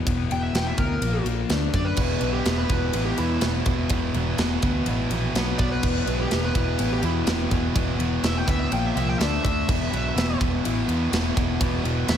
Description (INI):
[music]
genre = hard rock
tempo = 125 BPM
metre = 4/4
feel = straight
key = unclear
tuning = A4 = 438 Hz
[part]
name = crunchy overdriven guitar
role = riff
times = 0.0-12.2 s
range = E2 to D4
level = -27 LUFS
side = left 6 dB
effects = slapback echo
[part]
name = picked electric bass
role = bass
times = 0.1-12.2 s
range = E1 to F#2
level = -27 LUFS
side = right 1 dB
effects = none
[part]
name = tight metal drum kit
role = drums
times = 0.1-12.2 s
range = crash cymbal, kick drum, ride cymbal, snare drum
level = -27 LUFS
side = right 1 dB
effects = none
[part]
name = smooth overdriven lead guitar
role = melody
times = 0.3-12.2 s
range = E4 to G5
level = -30 LUFS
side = equal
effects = none
[part]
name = high-gain distorted guitar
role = riff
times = 2.0-12.2 s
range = E2 to D4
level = -29 LUFS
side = right 10 dB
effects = distortion, slapback echo
[sound]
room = moderate lush hall reverb, RT60 1.8 s, studio reverb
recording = big arena sound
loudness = -21 LUFS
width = side -9 dB against mid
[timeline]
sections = 0.0-12.2 A section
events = lead electric guitar solo 0.0-12.2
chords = 0.0 E5; 1.0 A#5; 1.5 D5; 2.0 E5; 5.3 B5; 5.8 E5; 8.7 A#5; 9.2 D5; 9.7 E5